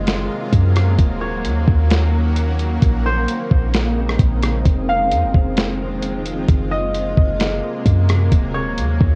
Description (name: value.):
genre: hip hop, atmospheric cloud-rap.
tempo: 131 BPM.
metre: 4/4.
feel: half-time.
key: Bb minor.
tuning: A4 = 440 Hz.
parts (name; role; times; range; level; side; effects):
concert harp; melody; 0.0-9.2 s; C5 to F5; -27 LUFS; equal; cassette tape, tape echo.
shimmering ambient pad; sustained chords; 0.0-9.2 s; C3 to Gb4; -26 LUFS; equal; chorus, built-in reverb, sidechain pumping.
clean 808-style bass; bass; 0.0-9.2 s; Eb1 to Gb2; -20 LUFS; equal; none.
lo-fi sampler-style drum kit; drums; 0.1-9.1 s; hi-hat, kick drum, rim click, snare drum; -20 LUFS; equal; cassette tape.
room: little or no reverb.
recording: home recording on cassette.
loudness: -18 LUFS.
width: mono.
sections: 0.0-9.2 A section.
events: none.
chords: 0.0 Gbmaj9#11; 1.0 Ebm7; 2.8 Bbm11; 4.7 Fm7; 6.5 Gbmaj9#11; 8.3 Ebm7.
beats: 0.07 0.53 | 0.99 1.45 1.91 2.36 | 2.82 3.28 3.74 4.20 | 4.65 5.11 5.57 6.03 | 6.49 6.94 7.40 7.86 | 8.32 8.78.